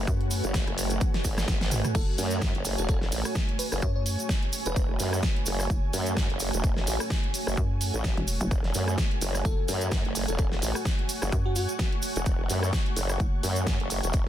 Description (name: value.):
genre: bass house.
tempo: 128 BPM.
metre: 4/4.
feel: swing 56% on 16ths.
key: F# minor.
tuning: A4 = 443 Hz.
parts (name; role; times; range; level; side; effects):
dark analog pad; sustained chords; 0.0-14.3 s; A3 to G#5; -36 LUFS; right 2 dB; chorus, sidechain pumping.
formant-sweep wobble bass; bass; 0.0-14.3 s; E1 to F#2; -29 LUFS; equal; chorus, overdrive, sidechain pumping.
ethereal airy pad; texture; 0.0-14.3 s; A3 to C#6; -36 LUFS; right 1 dB; ensemble chorus, built-in reverb, sidechain pumping.
hollow knocking FM bass; bass; 0.1-13.4 s; E1 to F#2; -29 LUFS; equal; tube saturation, sidechain pumping.
big-room dance drum kit; drums; 0.1-14.2 s; crash cymbal, hi-hat, rim click, snare drum, toms; -33 LUFS; equal; none.
electronic kick drum; drums; 0.1-14.2 s; none; -27 LUFS; equal; none.
cabasa; percussion; 0.1-14.2 s; none; -36 LUFS; right 4 dB; none.
bell-like FM electric piano; melody; 1.9-5.1, 9.4-12.2 s; F#4 to C#5; -37 LUFS; left 1 dB; chorus, phaser, digital delay.
room: little or no reverb.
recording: dense, heavily limited modern master.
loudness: -25 LUFS.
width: side -11 dB against mid.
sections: 0.0-14.3 A section.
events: drum fill 1.0-1.9.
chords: 0.0 F#madd9.